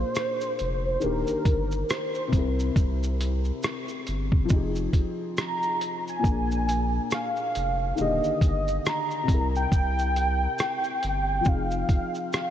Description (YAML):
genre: lo-fi hip hop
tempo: 69 BPM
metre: 4/4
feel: swing 58% on 16ths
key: F dorian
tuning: A4 = 440 Hz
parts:
  - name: warm velvety synth lead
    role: melody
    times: 0.0-12.5 s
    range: Bb4 to Bb5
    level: -28 LUFS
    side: right 1 dB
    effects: chorus, low-pass filter, diffuse ambient delay
  - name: felt-muted upright piano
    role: accompaniment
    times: 0.0-12.5 s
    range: Bb2 to Bb4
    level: -31 LUFS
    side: left 4 dB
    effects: low-pass filter
  - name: saturated sub bass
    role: bass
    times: 0.0-11.8 s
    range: Eb1 to C2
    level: -28 LUFS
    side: equal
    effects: none
  - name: lo-fi sampler-style drum kit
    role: drums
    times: 0.1-12.5 s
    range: hi-hat, kick drum, rim click, shaker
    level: -26 LUFS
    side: equal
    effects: none
room: moderate huge ambient reverb, RT60 4.0 s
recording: dreamy mix soaked in reverb, cassette tape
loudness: -23 LUFS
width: side -10 dB against mid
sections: 0.0-12.5 A section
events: none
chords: 0.0 Bb7; 1.0 Ebmaj7; 2.3 C7; 4.5 Fm7; 6.2 Bb7; 8.0 Ebmaj7; 9.3 C7; 11.5 Fm7